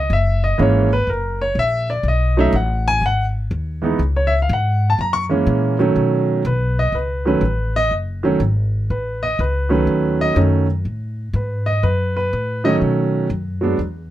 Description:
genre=jazz piano trio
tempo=123 BPM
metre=4/4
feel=swing 67% on 8ths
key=B mixolydian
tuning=A4 = 440 Hz
part: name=clear upright piano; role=melody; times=0.0-13.8 s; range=D#3 to C#6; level=-18 LUFS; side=right 1 dB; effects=none
part: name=upright bass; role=bass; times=0.0-14.1 s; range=F#1 to B2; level=-20 LUFS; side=left 1 dB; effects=none
room=light reverb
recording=none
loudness=-16 LUFS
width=side -13 dB against mid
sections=0.0-6.0 A section; 6.0-14.1 B section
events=upright piano solo 0.0-6.0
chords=0.1 F#9; 2.1 B7; 3.0 G#5; 4.0 C#5; 5.0 F#9; 6.0 B9

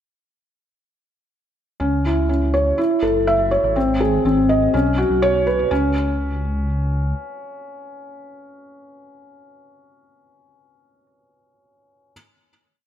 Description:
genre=piano and strings electronica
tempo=123 BPM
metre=4/4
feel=straight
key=C# minor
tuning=A4 = 445 Hz
part: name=felt-muted upright piano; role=riff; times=1.8-12.1 s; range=B#3 to E5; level=-18 LUFS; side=equal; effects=digital delay
part: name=dark detuned saw bass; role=bass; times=1.8-7.1 s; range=F#1 to C#2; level=-22 LUFS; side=equal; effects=none
room=wet echo chamber reverb, RT60 1.9 s, small room ambience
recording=none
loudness=-16 LUFS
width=side -9 dB against mid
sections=1.8-5.7 build; 5.7-9.6 final note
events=build-up 1.8-5.7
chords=1.8 C#m; 2.8 F#m7; 3.8 G#; 4.7 Bsus2; 5.7 N.C.

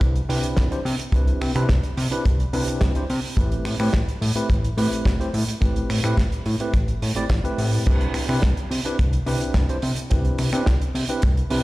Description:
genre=nu-disco, nu disco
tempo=107 BPM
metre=4/4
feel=straight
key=C major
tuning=A4 = 439 Hz
part: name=fat analog bass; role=bass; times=0.0-11.6 s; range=A1 to C3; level=-22 LUFS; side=equal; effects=none
part: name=damped 70s drum kit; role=drums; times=0.0-11.6 s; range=crash cymbal, finger snaps, hi-hat, snare drum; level=-30 LUFS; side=right 2 dB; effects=studio reverb
part: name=kick drum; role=drums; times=0.0-11.3 s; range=none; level=-21 LUFS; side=equal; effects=studio reverb
part: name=tine electric piano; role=accompaniment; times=0.3-11.6 s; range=A3 to D5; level=-27 LUFS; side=equal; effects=fast stereo tremolo, vintage 12-bit sampler grit, dub echo
room=studio reverb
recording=played on a big sound system in a bare room, large studio reverb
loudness=-19 LUFS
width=side -19 dB against mid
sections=0.0-11.6 A section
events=none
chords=0.0 Cmaj7; 3.4 Am7; 7.9 Cmaj7

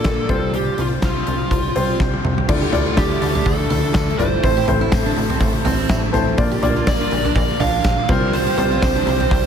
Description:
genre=piano-driven pop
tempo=123 BPM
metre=4/4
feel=swing 56% on 16ths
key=D minor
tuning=A4 = 440 Hz
part: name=fuzz lead guitar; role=melody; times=0.0-9.5 s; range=F4 to F5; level=-22 LUFS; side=right 2 dB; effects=distortion
part: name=warm concert grand piano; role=accompaniment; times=0.0-9.5 s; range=A2 to A5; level=-22 LUFS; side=left 2 dB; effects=none
part: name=huge arena drum kit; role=drums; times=0.0-9.4 s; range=crash cymbal, hi-hat, kick drum, snare drum, toms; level=-20 LUFS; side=equal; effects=none
part: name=plucky analog bass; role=bass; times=0.1-9.5 s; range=G1 to D2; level=-23 LUFS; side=equal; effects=none
part: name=dark studio string section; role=sustained chords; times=2.5-9.5 s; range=C3 to E5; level=-30 LUFS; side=right 1 dB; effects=none
part: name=tambourine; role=percussion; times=2.5-9.4 s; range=none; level=-42 LUFS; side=left 4 dB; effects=none
part: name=picked steel-string acoustic guitar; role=riff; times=2.6-9.3 s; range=C4 to G4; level=-28 LUFS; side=right 6 dB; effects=none
room=light reverb, small room ambience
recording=none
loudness=-16 LUFS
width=side -8 dB against mid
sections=0.0-2.5 A section; 2.5-9.5 B section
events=drum fill 2.0-2.5; grand piano fill 5.7-6.4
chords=0.3 Csus4; 2.5 Dmadd9; 4.4 Am; 6.4 Bb; 8.1 Csus4

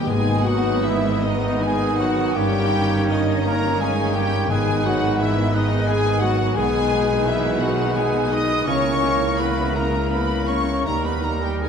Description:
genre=classical, slow romantic movement for symphony orchestra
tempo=51-59 BPM (dotted quarters)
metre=6/8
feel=rubato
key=G# minor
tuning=A4 = 440 Hz
part: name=clear studio violin section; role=melody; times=0.0-11.7 s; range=D#5 to D#6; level=-30 LUFS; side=left 3 dB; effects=none
part: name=bright studio violin section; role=second line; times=0.0-11.7 s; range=D#4 to D#5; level=-33 LUFS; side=left 4 dB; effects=none
part: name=mellow hollow flute section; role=second line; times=0.0-11.7 s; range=D#5 to D#6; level=-29 LUFS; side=left 2 dB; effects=none
part: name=rich studio viola section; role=accompaniment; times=0.0-11.7 s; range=D#3 to D#4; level=-28 LUFS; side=right 1 dB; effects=none
part: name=mellow French horn section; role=sustained chords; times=0.0-11.7 s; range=D#3 to D#4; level=-27 LUFS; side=left 4 dB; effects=none
part: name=concert harp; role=arpeggios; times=0.0-11.7 s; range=G2 to A#5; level=-30 LUFS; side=left 7 dB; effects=none
part: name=warm trumpet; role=stabs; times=0.0-11.7 s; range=D#4 to D#5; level=-29 LUFS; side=right 2 dB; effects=none
part: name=timpani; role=percussion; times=0.0-5.5 s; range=G#2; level=-29 LUFS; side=left 1 dB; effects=none
part: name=bright oboe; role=second line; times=0.1-11.7 s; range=A#4 to D#5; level=-33 LUFS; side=right 2 dB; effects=none
part: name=mellow clarinet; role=second line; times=0.1-11.7 s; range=D#4 to E4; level=-30 LUFS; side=right 2 dB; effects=none
part: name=warm bassoon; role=accompaniment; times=0.1-11.7 s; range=G3 to B3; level=-28 LUFS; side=equal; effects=none
part: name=bright studio cello section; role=bass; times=0.1-11.7 s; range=D#2 to C#3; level=-27 LUFS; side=right 2 dB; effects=none
part: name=clear studio double bass section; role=bass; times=0.1-11.7 s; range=G1 to D#2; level=-27 LUFS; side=right 4 dB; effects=none
room=wet concert hall reverb, RT60 2.2 s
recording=dark, warm production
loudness=-18 LUFS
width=side -7 dB against mid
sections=0.1-11.7 A section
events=none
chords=0.1 G#m; 2.3 D#7/G; 4.5 G#m; 6.6 G#m/B; 8.7 A#dim/C#; 10.9 D#

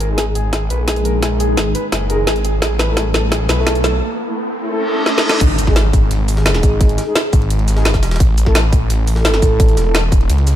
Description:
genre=dark technical drum and bass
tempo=172 BPM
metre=4/4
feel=straight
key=G# minor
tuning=A4 = 441 Hz
part: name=dark analog pad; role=sustained chords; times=0.0-4.0 s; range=G#3 to B4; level=-29 LUFS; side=left 2 dB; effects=chorus, phaser, sidechain pumping
part: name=felt-muted upright piano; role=arpeggios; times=0.0-3.9 s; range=G#4 to G#5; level=-25 LUFS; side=equal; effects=sidechain pumping, low-pass filter, ping-pong delay
part: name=snarling distorted saw bass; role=bass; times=0.0-10.6 s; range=E1 to C#2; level=-16 LUFS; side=equal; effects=distortion, overdrive, sidechain pumping
part: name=drum and bass drum kit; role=drums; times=0.0-10.5 s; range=crash cymbal, hi-hat, shaker, snare drum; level=-20 LUFS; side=equal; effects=overdrive
part: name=riser, reverse cymbal and impact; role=sound effects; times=2.0-6.8 s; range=none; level=-24 LUFS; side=right 1 dB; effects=none
part: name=mellow brass ensemble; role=stabs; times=0.1-10.0 s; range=G#3 to A4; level=-21 LUFS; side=equal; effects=ping-pong delay
part: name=electronic kick drum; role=drums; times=0.2-10.2 s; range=none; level=-15 LUFS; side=equal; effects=high-pass filter on kick, high-pass filter on room
part: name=jungle sampler-style drum kit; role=drums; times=5.4-10.6 s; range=hi-hat, ride cymbal, snare drum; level=-30 LUFS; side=right 1 dB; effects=none
room=light reverb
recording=dark, warm production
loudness=-13 LUFS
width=side -12 dB against mid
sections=0.0-5.4 A section; 5.4-10.6 B section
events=build-up 0.0-5.4; drum fill 0.0-4.0, 5.1-5.4; filter sweep on analog synth pad 0.0-5.4; riser 2.0-5.4; reverse cymbal 4.7-5.4; drop 5.4-10.6; impact 5.4-6.8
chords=0.0 G#5; 2.6 A5; 5.4 G#5; 8.2 A5

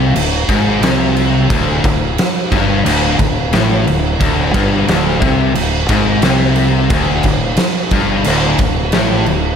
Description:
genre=hard rock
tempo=89 BPM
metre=4/4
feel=straight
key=unclear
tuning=A4 = 441 Hz
part: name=overdriven electric guitar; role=riff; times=0.0-9.5 s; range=D2 to C3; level=-17 LUFS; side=left 8 dB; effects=none
part: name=sludgy distorted guitar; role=riff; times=0.0-9.5 s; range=D2 to C3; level=-18 LUFS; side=right 6 dB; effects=overdrive, slapback echo
part: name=growling fingered electric bass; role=bass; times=0.0-9.6 s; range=D1 to C2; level=-19 LUFS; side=equal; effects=overdrive
part: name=big rock drum kit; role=drums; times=0.2-9.4 s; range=crash cymbal, kick drum, snare drum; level=-16 LUFS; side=right 1 dB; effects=none
room=light reverb, studio ambience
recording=none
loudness=-11 LUFS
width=side -7 dB against mid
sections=0.0-9.6 A section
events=none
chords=0.0 D5

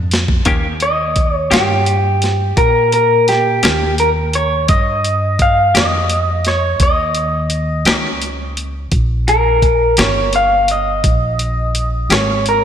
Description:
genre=slow blues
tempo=57 BPM (dotted quarters)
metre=12/8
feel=straight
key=unclear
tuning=A4 = 441 Hz
part: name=upright bass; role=bass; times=0.0-12.6 s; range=G1 to Bb2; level=-19 LUFS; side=equal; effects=none
part: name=boom bap sampler-style drum kit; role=drums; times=0.1-12.6 s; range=hi-hat, kick drum, snare drum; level=-17 LUFS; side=equal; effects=none
part: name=semi-hollow electric guitar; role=accompaniment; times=0.5-12.3 s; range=Eb3 to G4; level=-21 LUFS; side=left 3 dB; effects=tremolo, slapback echo
part: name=electric guitar through a small old amp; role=melody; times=0.8-12.6 s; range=G4 to F5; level=-15 LUFS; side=equal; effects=spring reverb
room=moderate lush hall reverb, RT60 1.8 s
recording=big arena sound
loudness=-12 LUFS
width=side -9 dB against mid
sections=0.0-12.6 A section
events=drum fill 0.0-0.4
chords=0.4 Eb7

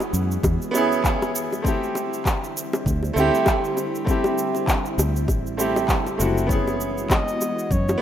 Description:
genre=sunset chillout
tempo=99 BPM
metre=4/4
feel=swing 57% on 16ths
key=unclear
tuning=A4 = 439 Hz
part: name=bright baby grand piano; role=accompaniment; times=0.0-8.0 s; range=A3 to G#4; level=-24 LUFS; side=right 1 dB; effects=auto-pan, tape echo
part: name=soft string machine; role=sustained chords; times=0.0-8.0 s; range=D3 to F#4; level=-30 LUFS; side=equal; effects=phaser, ensemble chorus
part: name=electronic cabasa and handclaps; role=drums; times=0.0-8.0 s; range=none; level=-28 LUFS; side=equal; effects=none
part: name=bongos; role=percussion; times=0.0-8.0 s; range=none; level=-28 LUFS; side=left 1 dB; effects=none
part: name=fingered electric bass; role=bass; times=0.1-7.9 s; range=F#1 to F#2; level=-25 LUFS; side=equal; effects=none
part: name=electronic kick drum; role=drums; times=0.4-7.8 s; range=none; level=-24 LUFS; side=equal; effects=none
part: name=trumpet with bucket mute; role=melody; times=7.1-8.0 s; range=C#5 to D#5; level=-27 LUFS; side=left 1 dB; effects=none
room=moderate lush hall reverb, RT60 2.0 s, digital ambience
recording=rough home demo mix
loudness=-20 LUFS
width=side -10 dB against mid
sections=0.0-8.0 A section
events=none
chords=0.0 F#9sus4; 1.6 D9sus4; 6.5 F#9sus4

